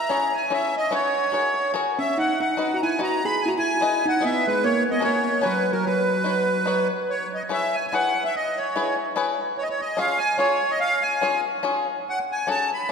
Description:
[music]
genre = musette waltz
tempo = 145 BPM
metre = 3/4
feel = swing 55% on 8ths, rubato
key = B major, E major from 7.1 s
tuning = A4 = 444 Hz
[part]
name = accordion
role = melody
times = 0.0-12.9 s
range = A#4 to B5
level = -23 LUFS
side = right 1 dB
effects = light tremolo tuning
[part]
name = bluegrass banjo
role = accompaniment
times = 0.1-12.9 s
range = C#4 to D#5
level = -26 LUFS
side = left 4 dB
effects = none
[part]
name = hollow-body jazz guitar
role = second line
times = 2.0-6.9 s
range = F#3 to G#4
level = -26 LUFS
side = right 2 dB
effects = none
[sound]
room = wet church reverb, RT60 3.4 s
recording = recorded in a church or concert hall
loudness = -20 LUFS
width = side -6 dB against mid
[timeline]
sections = 0.0-7.1 A section; 7.1-12.9 B section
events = none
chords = 0.0 C#m; 0.9 F#sus4; 1.3 F#add9; 2.2 B; 3.4 Emaj7; 4.6 F#; 5.8 Badd9; 7.1 E6; 9.6 C#; 12.1 F#madd9

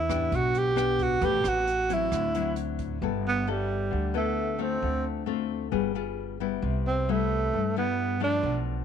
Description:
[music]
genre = bossa nova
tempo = 133 BPM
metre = 4/4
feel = straight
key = G major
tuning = A4 = 440 Hz
[part]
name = mellow tenor saxophone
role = melody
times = 0.0-8.6 s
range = G3 to G4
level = -27 LUFS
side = right 3 dB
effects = none
[part]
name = nylon-string guitar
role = accompaniment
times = 0.0-8.8 s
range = G2 to B4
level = -31 LUFS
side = left 14 dB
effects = none
[part]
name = upright bass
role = bass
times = 0.0-8.8 s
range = G1 to G2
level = -32 LUFS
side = right 1 dB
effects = none
[part]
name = jazz brush drum kit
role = drums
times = 0.1-2.9 s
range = hi-hat, kick drum, rim click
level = -38 LUFS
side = right 4 dB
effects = none
[sound]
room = small room ambience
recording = 1960s-style stereo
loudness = -25 LUFS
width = side -8 dB against mid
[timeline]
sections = 0.0-3.0 A section; 3.0-8.8 B section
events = tenor saxophone solo 3.0-8.8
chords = 0.0 Em7; 1.2 Am9; 2.1 D9; 3.0 G69; 4.8 Dm7; 5.7 G7b9; 6.6 Cmaj7

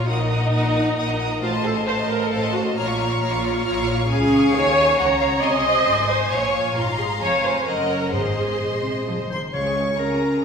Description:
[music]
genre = quick classical-period movement for symphony orchestra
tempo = 134 BPM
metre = 3/4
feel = straight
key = Bb minor, Db major from 4.1 s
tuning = A4 = 440 Hz
[part]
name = warm studio violin section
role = melody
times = 0.0-10.4 s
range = F5 to F6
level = -30 LUFS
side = left 3 dB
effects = none
[part]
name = clear chamber violin section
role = second line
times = 0.0-10.4 s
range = Bb4 to Db6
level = -26 LUFS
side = left 2 dB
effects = none
[part]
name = dark chamber viola section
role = accompaniment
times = 0.0-10.4 s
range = Ab3 to Eb5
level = -22 LUFS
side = right 1 dB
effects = none
[part]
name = rich studio double bass section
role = bass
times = 0.1-10.4 s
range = F1 to Eb2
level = -28 LUFS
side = equal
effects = none
[part]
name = warm chamber cello section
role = bass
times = 0.1-10.4 s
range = F2 to F3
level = -26 LUFS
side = right 1 dB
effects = none
[part]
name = timpani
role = percussion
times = 8.1-10.2 s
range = Ab2 to Db3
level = -32 LUFS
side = left 2 dB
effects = none
[part]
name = mellow clarinet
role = second line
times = 9.3-10.4 s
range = Bb4 to Db5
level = -24 LUFS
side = right 1 dB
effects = none
[part]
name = dark French horn section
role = sustained chords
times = 9.5-10.4 s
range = Ab3 to Db4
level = -24 LUFS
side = left 1 dB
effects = none
[sound]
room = wet recital hall reverb, RT60 1.4 s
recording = recorded in a church or concert hall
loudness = -18 LUFS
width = side -6 dB against mid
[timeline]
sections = 0.0-9.5 A section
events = none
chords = 0.1 Ebm/Bb; 1.4 F7/A; 2.8 Bbm; 4.1 Db; 5.4 Ab/C; 6.3 Bbm; 6.8 Fm/Ab; 7.7 Ebm/Gb; 8.1 Ab; 9.5 Db

